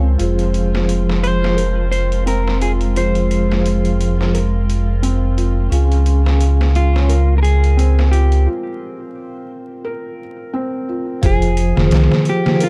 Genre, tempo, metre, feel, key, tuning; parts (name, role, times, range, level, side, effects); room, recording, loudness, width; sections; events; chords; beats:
trip hop; 87 BPM; 4/4; swing 56% on 16ths; F minor; A4 = 439 Hz
warm chamber string section; sustained chords; 0.0-8.5 s; Ab3 to F4; -29 LUFS; equal
felt-muted upright piano; arpeggios; 0.0-12.7 s; C4 to Bb4; -29 LUFS; equal; low-pass filter, tape echo
round analog bass; bass; 0.0-12.1 s; F1 to Db2; -17 LUFS; equal
backwards swelling texture; texture; 0.0-8.5 s; F3 to C4; -38 LUFS; equal
vibraphone with medium hard mallets; accompaniment; 0.2-12.6 s; F3 to Ab5; -24 LUFS; equal; tremolo, tape echo
trip hop sampler-style drum kit; drums; 0.2-12.7 s; hi-hat, kick drum, snare drum; -24 LUFS; equal; high-pass filter on hats, studio reverb, high-pass filter on snare, high-pass filter on kick
clean electric guitar; melody; 1.2-12.7 s; F4 to C5; -25 LUFS; equal; vintage 12-bit sampler grit, tape echo
little or no reverb; dark, warm production, vinyl crackle; -16 LUFS; mono
0.0-11.2 A section; 11.2-12.7 B section
filter sweep on felt piano 0.0-11.2; break 8.5-11.2
0.2 Fm; 5.7 Db; 11.2 Fm
| 0.20 0.89 1.58 2.27 | 2.96 3.65 4.33 5.03 | 5.71 6.40 7.09 7.78 | 8.47 9.16 9.85 10.54 | 11.23 11.92 12.61